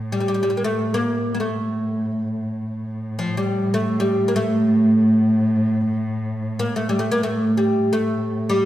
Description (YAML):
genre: Arabic maqam ensemble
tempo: free time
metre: none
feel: none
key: unclear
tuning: A4 = 440 Hz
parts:
  - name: dark cello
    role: drone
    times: 0.0-8.7 s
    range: A2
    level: -28 LUFS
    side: equal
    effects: none
  - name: oud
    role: melody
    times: 0.1-8.7 s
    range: F3 to Bb3+25c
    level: -19 LUFS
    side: equal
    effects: none
room: wet concert hall reverb, RT60 1.9 s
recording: recorded in a church or concert hall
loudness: -18 LUFS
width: side -12 dB against mid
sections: 0.0-8.7 A section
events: none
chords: none